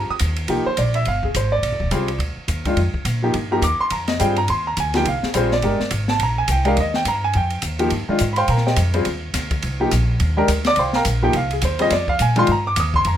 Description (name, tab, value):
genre	modal jazz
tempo	210 BPM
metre	4/4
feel	swing 60% on 8ths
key	F dorian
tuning	A4 = 442 Hz
part	clear grand piano	accompaniment	0.0-13.2 s	Eb3 to Eb6	-19 LUFS	equal	none
part	upright bass	bass	0.0-13.2 s	Eb1 to Bb2	-21 LUFS	equal	none
part	open jazz drum kit	drums	0.2-13.1 s	hi-hat, kick drum, ride cymbal, snare drum	-26 LUFS	equal	none
room	light reverb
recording	minimal, uncompressed stereo recording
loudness	-17 LUFS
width	side -10 dB against mid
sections	0.0-13.2 A section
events	none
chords	0.0 F9sus4